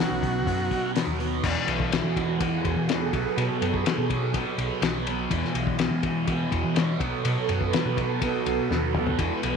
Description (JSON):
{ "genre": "psychedelic rock", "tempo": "124 BPM", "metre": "4/4", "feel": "straight", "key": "unclear", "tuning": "A4 = 440 Hz", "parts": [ { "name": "overdriven combo organ", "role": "melody", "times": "0.0-0.9 s", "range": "F#4", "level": "-31 LUFS", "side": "right 1 dB", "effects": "tape echo" }, { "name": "soft string machine", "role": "sustained chords", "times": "0.0-9.6 s", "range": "F#3 to D#5", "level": "-32 LUFS", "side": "right 11 dB", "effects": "ensemble chorus" }, { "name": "thick fuzz guitar", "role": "riff", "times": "0.0-9.6 s", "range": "E2 to B3", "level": "-28 LUFS", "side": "right 1 dB", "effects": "distortion, phaser" }, { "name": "cloth-damped thuddy drum kit", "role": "drums", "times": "0.0-9.5 s", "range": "crash cymbal, hi-hat, kick drum, ride cymbal, snare drum, toms", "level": "-28 LUFS", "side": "left 6 dB", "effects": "none" }, { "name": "hollow-body short-scale picked electric bass", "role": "bass", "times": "0.1-9.6 s", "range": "B1 to E3", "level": "-29 LUFS", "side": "equal", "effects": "none" } ], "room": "light reverb, small room ambience", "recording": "1960s-style stereo with parts hard left and right", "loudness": "-23 LUFS", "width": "side -6 dB against mid", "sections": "0.0-1.4 A section; 1.4-9.6 B section", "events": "string machine solo 1.4-9.6; drum fill 8.7-9.2", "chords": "0.0 Badd9; 1.4 E; 3.1 B5; 5.3 E5; 7.0 B", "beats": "0.47 0.96 | 1.44 1.93 2.41 2.89 | 3.38 3.86 4.34 4.83 | 5.31 5.80 6.28 6.77 | 7.25 7.74 8.22 8.71 | 9.19" }